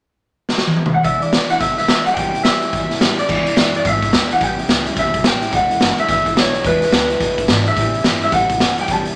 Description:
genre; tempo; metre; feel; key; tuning
rockabilly; 214 BPM; 4/4; swing 62% on 8ths; unclear; A4 = 437 Hz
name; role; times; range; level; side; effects
raw garage drum kit; drums; 0.5-9.1 s; crash cymbal, hi-hat, kick drum, snare drum, toms; -19 LUFS; equal; none
electric guitar through a small old amp; melody; 0.9-9.2 s; B4 to A5; -20 LUFS; equal; none
picked steel-string acoustic guitar; accompaniment; 1.0-9.2 s; E2 to E4; -26 LUFS; equal; none
upright bass; bass; 3.3-9.2 s; E1 to A2; -28 LUFS; equal; none
room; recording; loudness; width
moderate large studio reverb, RT60 1.1 s; none; -16 LUFS; mono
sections
0.0-1.1 A section; 1.1-3.3 B section; 3.3-9.2 C section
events
drum fill 0.5-1.1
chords
0.0 N.C.; 1.1 E7; 2.2 A7; 3.3 E7; 4.4 A7; 5.5 E7; 7.8 A7

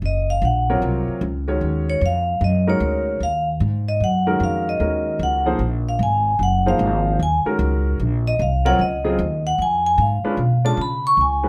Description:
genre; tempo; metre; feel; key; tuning
modal jazz; 151 BPM; 4/4; swing 66% on 8ths; Eb dorian; A4 = 440 Hz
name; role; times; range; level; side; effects
upright bass; bass; 0.0-11.5 s; Gb1 to Db3; -23 LUFS; equal; none
vibraphone with medium hard mallets; melody; 0.1-11.5 s; Db5 to Db6; -23 LUFS; equal; none
warm grand piano; accompaniment; 0.7-11.5 s; C3 to D5; -26 LUFS; equal; none
room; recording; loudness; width
light reverb; none; -20 LUFS; mono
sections
0.0-11.2 A section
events
vibraphone solo 0.0-11.5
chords
0.0 Ebm11; 9.6 Db7b9

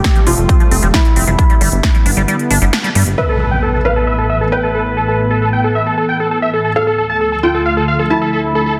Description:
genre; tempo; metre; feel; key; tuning
uplifting trance; 134 BPM; 4/4; straight; unclear; A4 = 436 Hz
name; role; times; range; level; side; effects
felt-muted upright piano; second line; 0.0-8.8 s; E4 to B4; -22 LUFS; equal; tape echo
lush unison pad; sustained chords; 0.0-8.8 s; D2 to E5; -22 LUFS; equal; chorus, sidechain pumping
liquid acid bass; arpeggios; 0.0-3.0 s; F3 to D4; -23 LUFS; equal; chorus, sidechain pumping, tape echo
big-room dance drum kit; drums; 0.0-3.2 s; hi-hat, snare drum; -21 LUFS; equal; overdrive, sidechain pumping on hats
electronic kick drum; drums; 0.0-1.9 s; none; -14 LUFS; equal; none
plucky analog bass; bass; 0.3-3.1 s; F1 to G2; -17 LUFS; equal; sidechain pumping
big supersaw lead; melody; 3.2-8.7 s; A4 to A5; -19 LUFS; equal; sidechain pumping, low-pass filter, tape echo
impact; sound effects; 3.2-5.0 s; none; -22 LUFS; equal; none
room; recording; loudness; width
light reverb; dense, heavily limited modern master; -14 LUFS; mono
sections
0.0-3.2 A section; 3.2-8.8 B section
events
filter sweep on acid bass 0.0-3.2; kick drops out 2.3-3.2; band accent 2.7; impact 3.2-5.0; filter sweep on supersaw synth 3.2-8.8; filter sweep on analog synth pad 3.2-8.8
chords
0.0 Fadd9; 1.4 G; 3.2 Asus2; 6.8 Dm

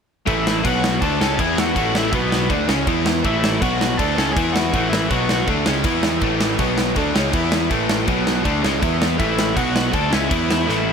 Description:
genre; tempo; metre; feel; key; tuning
punk rock; 161 BPM; 4/4; straight; A major; A4 = 439 Hz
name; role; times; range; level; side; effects
biting lead guitar; melody; 0.3-5.5, 9.2-10.9 s; B3 to A5; -25 LUFS; left 2 dB; overdrive, ping-pong delay
biting overdriven guitar; riff; 0.3-10.9 s; A2 to E4; -24 LUFS; right 13 dB; none
crunchy overdriven guitar; riff; 0.3-10.9 s; A2 to E4; -24 LUFS; left 13 dB; none
crunchy overdriven guitar; riff; 0.3-10.9 s; A2 to E4; -25 LUFS; left 1 dB; none
picked electric bass; bass; 0.3-10.9 s; A1 to E2; -26 LUFS; equal; none
big rock drum kit; drums; 0.3-10.8 s; crash cymbal, kick drum, snare drum; -22 LUFS; equal; none
room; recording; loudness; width
light reverb; none; -16 LUFS; side -6 dB against mid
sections
0.3-10.9 A section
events
drum fill 10.7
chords
0.3 A5; 0.6 B5; 1.0 A; 1.4 E5; 1.8 A5; 2.1 B5; 2.5 A; 2.9 E5; 3.2 A5; 3.6 B5; 4.0 A; 4.4 E5; 4.7 A5; 5.1 B5; 5.5 A; 5.8 E5; 6.2 A5; 6.6 B5; 7.0 A; 7.3 E5; 7.7 A5; 8.1 B5; 8.5 A; 8.8 E5; 9.2 A5; 9.6 B5; 9.9 A; 10.3 E5

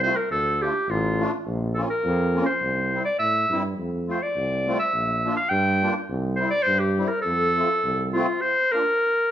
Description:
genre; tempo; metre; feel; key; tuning
alpine folk, alpine dance band; 104 BPM; 2/4; straight; F major; A4 = 437 Hz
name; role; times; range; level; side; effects
bright clarinet; melody; 0.0-9.3 s; F4 to G5; -22 LUFS; equal; none
musette accordion; accompaniment; 0.0-8.9 s; G3 to F4; -29 LUFS; left 1 dB; none
warm tuba; bass; 0.0-8.2 s; A1 to A2; -27 LUFS; right 1 dB; none
room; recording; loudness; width
moderate large studio reverb, RT60 1.2 s; band playing live in one room; -21 LUFS; side -11 dB against mid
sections
0.0-8.4 A section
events
none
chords
0.3 Dm; 1.5 Bbm; 2.6 C; 3.8 F; 4.9 Bb; 6.1 C; 7.2 F; 8.4 Bb

